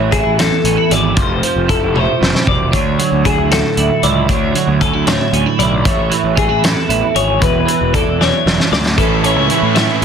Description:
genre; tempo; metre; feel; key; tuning
math rock and midwest emo; 77 BPM (dotted quarters); 6/8; straight; A major; A4 = 440 Hz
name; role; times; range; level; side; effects
twelve-string electric guitar; accompaniment; 0.0-10.0 s; E2 to G#4; -17 LUFS; right 10 dB; ensemble chorus, plate reverb
twelve-string electric guitar; arpeggios; 0.0-10.0 s; G#4 to E5; -18 LUFS; left 9 dB; plate reverb
fuzz picked electric bass; bass; 0.0-10.0 s; E1 to A2; -18 LUFS; equal; overdrive
loose indie drum kit; drums; 0.1-10.0 s; hi-hat, kick drum, snare drum, toms; -17 LUFS; equal; soft clipping on kick
cranked stack guitar; riff; 9.0-10.0 s; E3 to E4; -16 LUFS; right 3 dB; overdrive, spring reverb
room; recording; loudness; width
light reverb; dense, heavily limited modern master; -11 LUFS; side -7 dB against mid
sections
0.0-9.0 A section; 9.0-10.0 B section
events
drum fill 1.9-2.7, 8.2-9.0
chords
0.0 Amaj7; 1.2 Fmaj7; 2.7 Dmaj9; 5.9 Amaj7; 7.4 E7sus4; 9.0 A

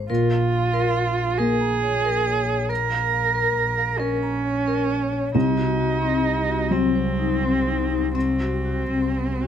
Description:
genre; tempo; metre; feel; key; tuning
neoclassical piano and strings; 39-47 BPM (dotted quarters); 6/8; rubato; Bb minor; A4 = 443 Hz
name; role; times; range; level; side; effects
felt-muted upright piano; accompaniment; 0.0-9.5 s; C2 to Bb3; -25 LUFS; equal; none
rich double bass; bass; 0.0-9.5 s; Ab1 to C2; -28 LUFS; left 1 dB; none
warm cello; second line; 0.1-9.5 s; C4 to Bb4; -23 LUFS; right 5 dB; none
vibraphone with medium hard mallets; arpeggios; 0.1-9.5 s; C4 to Bb5; -27 LUFS; left 8 dB; slapback echo
room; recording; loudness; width
light reverb; close, detailed microphones; -20 LUFS; side -9 dB against mid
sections
0.0-9.5 A section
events
none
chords
0.1 Bbm; 5.3 Cdim

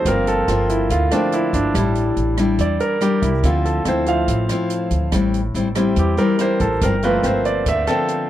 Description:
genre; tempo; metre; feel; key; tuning
bossa nova; 142 BPM; 4/4; straight; unclear; A4 = 439 Hz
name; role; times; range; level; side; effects
clear concert grand piano; accompaniment; 0.0-8.3 s; F3 to F5; -20 LUFS; right 2 dB; none
upright bass; bass; 0.0-7.9 s; G1 to E2; -22 LUFS; equal; none
nylon-string guitar; accompaniment; 0.1-8.3 s; G2 to E4; -21 LUFS; left 3 dB; none
open jazz drum kit; drums; 0.1-8.2 s; hi-hat, kick drum, rim click; -27 LUFS; right 1 dB; none
room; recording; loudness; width
little or no reverb; dry, close 1970s-style studio recording; -16 LUFS; side -12 dB against mid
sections
0.0-8.3 A section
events
grand piano solo 0.0-8.3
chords
0.1 Gm11; 1.7 A7sus4; 3.4 Dm9; 5.1 Am7; 6.8 Gm11

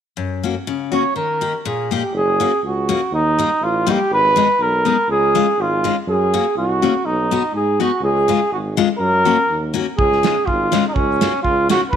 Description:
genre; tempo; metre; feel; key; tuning
alpine folk, alpine dance band; 122 BPM; 2/4; swing 54% on 8ths; F# major; A4 = 440 Hz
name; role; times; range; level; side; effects
picked steel-string acoustic guitar; accompaniment; 0.2-11.8 s; F#2 to G4; -21 LUFS; left 9 dB; none
mellow flugelhorn; melody; 0.9-12.0 s; C#4 to C#5; -17 LUFS; right 1 dB; none
mellow tuba; bass; 2.1-12.0 s; F#1 to G#2; -22 LUFS; right 1 dB; none
loose indie drum kit; drums; 10.0-12.0 s; kick drum, snare drum; -22 LUFS; right 3 dB; none
room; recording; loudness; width
moderate echo chamber reverb, RT60 1.9 s; 1960s-style stereo; -15 LUFS; side -8 dB against mid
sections
0.2-2.1 A section; 2.1-12.0 B section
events
none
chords
0.2 F#; 1.2 D#; 2.1 F#; 3.1 D#; 4.1 G#m; 5.1 C#; 6.1 F#; 7.1 B; 8.0 C#; 9.0 F#; 10.0 C#; 11.0 F#/C#

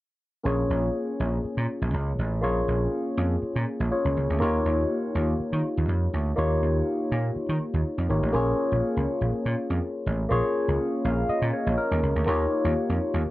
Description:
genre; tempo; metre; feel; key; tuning
disco; 122 BPM; 4/4; straight; Bb dorian; A4 = 439 Hz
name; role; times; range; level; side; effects
barky tine electric piano; accompaniment; 0.4-13.3 s; Bb3 to F5; -26 LUFS; left 1 dB; phaser
vintage slap bass; bass; 0.5-13.3 s; Ab1 to Eb3; -25 LUFS; right 1 dB; none
room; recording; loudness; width
light reverb, digital ambience; none; -23 LUFS; side -17 dB against mid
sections
0.5-8.3 A section; 8.3-13.3 B section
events
tine electric piano fill 10.8-12.3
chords
0.5 Bbm7; 4.4 Eb9; 8.3 Bbm7; 12.3 Eb9

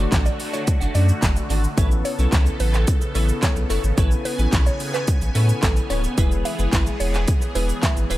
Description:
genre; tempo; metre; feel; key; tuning
dance-pop; 109 BPM; 4/4; straight; A major; A4 = 441 Hz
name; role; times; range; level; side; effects
tine electric piano; accompaniment; 0.0-8.2 s; G#3 to D5; -31 LUFS; left 4 dB; wide subtle chorus, sidechain pumping
filtered supersaw swell; sustained chords; 0.0-8.2 s; C#3 to G#5; -30 LUFS; right 1 dB; phaser, sidechain pumping
twelve-string electric guitar; riff; 0.0-8.2 s; A3 to B4; -34 LUFS; right 4 dB; ensemble chorus
warm sub bass; bass; 0.0-8.2 s; D1 to A2; -20 LUFS; equal; sidechain pumping
pop drum kit; drums; 0.1-8.2 s; handclaps, hi-hat, kick drum, shaker, snare drum; -21 LUFS; equal; none
tube shaker; percussion; 0.1-8.2 s; none; -41 LUFS; right 5 dB; none
mallet-like synth pluck; melody; 0.3-8.2 s; A4 to E5; -30 LUFS; right 1 dB; chorus, phaser, sidechain pumping, diffuse ambient delay
room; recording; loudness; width
little or no reverb; none; -18 LUFS; side -16 dB against mid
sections
0.0-8.2 A section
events
none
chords
0.0 D; 1.8 Aadd9; 6.2 E

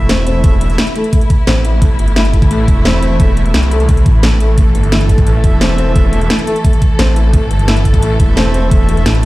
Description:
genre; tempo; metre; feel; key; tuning
dark technical drum and bass; 174 BPM; 4/4; straight; A minor; A4 = 439 Hz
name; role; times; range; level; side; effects
dark studio string section; sustained chords; 0.0-9.3 s; E3 to A4; -21 LUFS; left 1 dB; sidechain pumping
bright brass ensemble; stabs; 0.0-9.0 s; A3 to E5; -24 LUFS; right 3 dB; digital delay
snarling distorted saw bass; bass; 0.0-9.3 s; E1 to C2; -13 LUFS; equal; distortion, overdrive, sidechain pumping
felt-muted upright piano; arpeggios; 0.1-9.3 s; A3 to A4; -20 LUFS; left 2 dB; sidechain pumping, low-pass filter, digital delay
drum and bass drum kit; drums; 0.1-9.3 s; hi-hat, snare drum; -17 LUFS; equal; none
electronic kick drum; drums; 0.4-8.8 s; none; -10 LUFS; equal; none
room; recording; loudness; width
digital ambience; played on a big sound system in a bare room, stone room reverb; -9 LUFS; side -18 dB against mid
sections
0.0-9.3 A section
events
filter sweep on felt piano 0.0-9.3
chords
0.0 A5

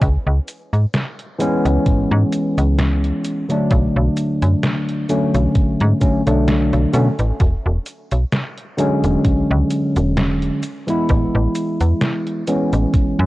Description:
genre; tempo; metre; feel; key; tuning
vaporwave; 65 BPM; 4/4; swing 55% on 16ths; A major; A4 = 441 Hz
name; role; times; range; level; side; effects
slap-like FM bass; bass; 0.0-13.3 s; E1 to B2; -17 LUFS; equal; tube saturation
detuned 8-bit digital drum machine; drums; 0.0-13.1 s; cabasa, hi-hat, snare drum; -24 LUFS; equal; none
electronic kick drum; drums; 0.0-13.1 s; none; -17 LUFS; equal; none
tine electric piano; accompaniment; 1.4-13.3 s; D3 to E4; -18 LUFS; equal; lush chorus, analog delay
room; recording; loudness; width
light reverb; worn, warbling old tape, cassette tape, warbly pitch drift; -15 LUFS; side -18 dB against mid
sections
0.0-13.3 A section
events
none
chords
0.0 C#m7; 3.7 Bm9; 7.4 E13; 10.6 Amaj7

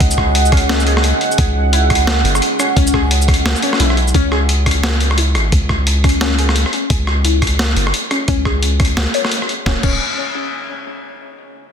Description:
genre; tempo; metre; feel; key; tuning
half-time drum and bass; 174 BPM; 4/4; swing 60% on 16ths, half-time; C# minor; A4 = 441 Hz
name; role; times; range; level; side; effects
deep dark ambient pad; sustained chords; 0.0-4.1, 9.7-9.8 s; C#4 to F#5; -21 LUFS; right 4 dB; chorus, built-in reverb, sidechain pumping
warbly dusty pluck; arpeggios; 0.0-10.0 s; C#4 to C#5; -22 LUFS; left 4 dB; phaser, analog chorus, digital delay
long sustained 808-style bass; bass; 0.0-10.0 s; C#1 to C#2; -16 LUFS; equal; none
boom bap sampler-style drum kit; drums; 0.0-9.9 s; crash cymbal, hi-hat, rim click, shaker, snare drum; -18 LUFS; equal; none
electronic kick drum; drums; 0.0-9.9 s; none; -17 LUFS; equal; none
room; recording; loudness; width
little or no reverb; dense, heavily limited modern master; -12 LUFS; side -7 dB against mid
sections
0.0-4.1 A section; 4.1-9.7 B section; 9.7-11.0 C section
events
drop 0.0-4.1; kick drops out 3.5-4.1; filter sweep on 808-style bass 4.1-9.7; filter sweep on synth pluck 4.1-9.7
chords
0.0 C#madd9; 4.1 C#m; 9.7 C#madd9

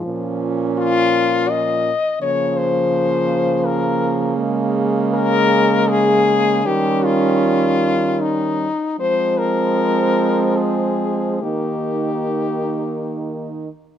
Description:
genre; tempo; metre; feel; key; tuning
classical, lyrical piece for horn quartet; 66-84 BPM; 3/4; rubato; unclear; A4 = 440 Hz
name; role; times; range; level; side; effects
clear French horn; melody; 0.0-13.6 s; Eb4 to Eb5; -19 LUFS; left 5 dB; none
mellow French horn; accompaniment; 0.0-13.7 s; F3 to Bb3; -23 LUFS; left 1 dB; none
warm French horn; second line; 0.1-13.7 s; Bb3 to Eb4; -23 LUFS; right 10 dB; none
mellow French horn; bass; 0.1-13.7 s; Bb2 to F3; -22 LUFS; right 2 dB; none
room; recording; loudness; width
light reverb; close, detailed microphones; -16 LUFS; side -9 dB against mid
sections
0.0-14.0 A section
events
none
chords
0.1 Bbm; 2.2 Bbm/Db; 4.4 Bbm7/Db; 6.7 Eb7; 9.0 Fm; 11.4 Eb

